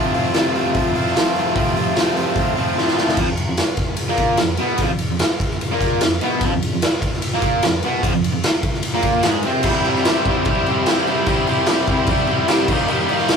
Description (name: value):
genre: garage rock duo or trio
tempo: 148 BPM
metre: 4/4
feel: straight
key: F major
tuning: A4 = 439 Hz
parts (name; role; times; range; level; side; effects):
- crunchy overdriven guitar; riff; 0.0-13.4 s; F2 to G4; -18 LUFS; equal; none
- raw garage drum kit; drums; 0.1-13.4 s; crash cymbal, hi-hat, kick drum, ride cymbal, snare drum; -19 LUFS; equal; none
room: moderate booth ambience, RT60 0.3 s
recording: rough rehearsal-room recording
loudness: -16 LUFS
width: side -6 dB against mid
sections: 0.0-3.2 A section; 3.2-9.7 B section; 9.7-13.4 C section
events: drum fill 2.8-3.2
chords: 0.0 F; 3.2 F5; 9.7 C; 12.7 Eb